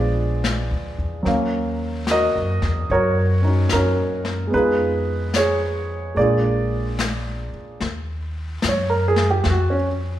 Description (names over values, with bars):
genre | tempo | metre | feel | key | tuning
jazz ballad | 73 BPM | 4/4 | swing 66% on 8ths | Eb minor | A4 = 440 Hz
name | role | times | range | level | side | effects
warm baby grand piano | accompaniment | 0.0-9.9 s | F3 to F5 | -21 LUFS | right 1 dB | none
upright bass | bass | 0.0-10.2 s | Bb1 to Gb2 | -23 LUFS | equal | none
jazz brush drum kit | drums | 0.4-10.2 s | brushed snare drum, hi-hat, snare drum | -27 LUFS | left 3 dB | none
room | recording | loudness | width
moderate recital hall reverb, RT60 1.4 s | recorded in a church or concert hall | -18 LUFS | side -12 dB against mid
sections
0.0-7.8 A section; 7.8-10.2 B section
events
none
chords
0.0 Bb7b9; 1.3 Ebm7; 4.5 Fm7b5; 6.2 Bb7; 7.8 Ebm